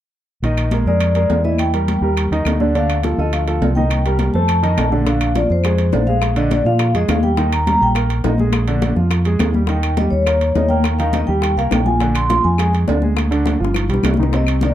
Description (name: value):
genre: Afro-Cuban jazz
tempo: 208 BPM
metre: 4/4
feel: straight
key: Bb mixolydian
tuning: A4 = 439 Hz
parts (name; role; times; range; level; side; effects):
- warm baby grand piano; accompaniment; 0.4-14.7 s; C3 to E5; -21 LUFS; right 2 dB; none
- fingered electric bass; bass; 0.4-14.7 s; G1 to Bb2; -18 LUFS; equal; none
- congas; percussion; 0.4-14.7 s; none; -23 LUFS; left 3 dB; none
- timbales; percussion; 0.4-14.7 s; none; -27 LUFS; right 6 dB; none
- vibraphone with medium mallets; melody; 0.5-14.7 s; C5 to C6; -20 LUFS; left 1 dB; none
- claves; percussion; 0.6-14.6 s; none; -31 LUFS; left 8 dB; none
- bongos; percussion; 5.1-14.7 s; none; -28 LUFS; left 7 dB; none
room: moderate club reverb, RT60 0.6 s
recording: dark, warm production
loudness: -14 LUFS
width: side -12 dB against mid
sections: 0.4-5.1 A section; 5.1-14.7 B section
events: drum fill 13.5-14.3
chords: 0.4 Bb7sus4; 1.6 Edim; 2.2 Eb; 2.8 Dm7; 3.9 Cm7; 4.5 F6; 5.1 Bb9; 7.4 Eb; 8.5 Bb7; 9.7 Eb7; 12.0 Bb7; 13.2 Ddim; 13.8 G7